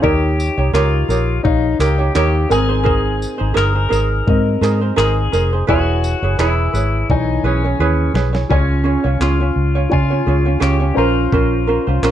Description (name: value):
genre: acoustic pop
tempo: 85 BPM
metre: 4/4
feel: swing 55% on 16ths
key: Ab major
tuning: A4 = 440 Hz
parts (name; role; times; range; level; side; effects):
- pedal steel guitar; second line; 0.0-12.1 s; C#4 to Bb4; -22 LUFS; left 5 dB; none
- ukulele; accompaniment; 0.0-12.1 s; Db4 to Db5; -20 LUFS; right 5 dB; none
- warm upright piano; accompaniment; 0.0-12.1 s; E3 to Bb5; -23 LUFS; left 2 dB; none
- vintage muted fingered electric bass; bass; 0.0-12.1 s; E1 to Db3; -17 LUFS; equal; none
- dusty soul sampler-style drum kit; drums; 0.0-12.1 s; handclaps, kick drum, snare drum, tambourine; -22 LUFS; equal; none
room: light reverb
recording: dark, warm production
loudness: -14 LUFS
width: side -11 dB against mid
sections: 0.0-8.5 A section; 8.5-12.1 B section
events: drum fill 7.1-8.5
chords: 0.0 Eb7; 2.5 Abadd9; 5.7 E6; 8.5 Db; 11.0 Bbmadd9